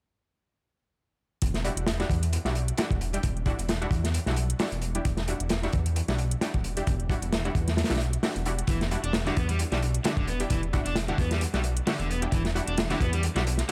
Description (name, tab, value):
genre	breakbeat, breaks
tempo	132 BPM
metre	4/4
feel	swing 55% on 16ths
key	E minor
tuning	A4 = 440 Hz
part	dark detuned saw bass	bass	1.4-13.6 s	E1 to E2	-31 LUFS	equal	none
part	crunchy breakbeat drum kit	drums	1.4-13.7 s	hi-hat, kick drum, snare drum	-31 LUFS	equal	none
part	electronic hi-hat	drums	1.4-13.7 s	none	-40 LUFS	equal	none
part	orchestra-hit-like synth stab	stabs	1.6-13.7 s	G3 to G4	-36 LUFS	equal	built-in reverb, delay
part	crunchy overdriven guitar	riff	8.7-13.7 s	D3 to D4	-35 LUFS	equal	tube saturation, delay
room	small room ambience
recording	none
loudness	-27 LUFS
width	mono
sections	1.4-13.7 A section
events	none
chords	1.4 Em9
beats	| 1.42 1.87 2.33 2.78 | 3.23 3.69 4.14 4.60 | 5.05 5.51 5.96 6.42 | 6.87 7.33 7.78 8.23 | 8.69 9.14 9.60 10.05 | 10.51 10.96 11.42 11.87 | 12.33 12.78 13.23 13.69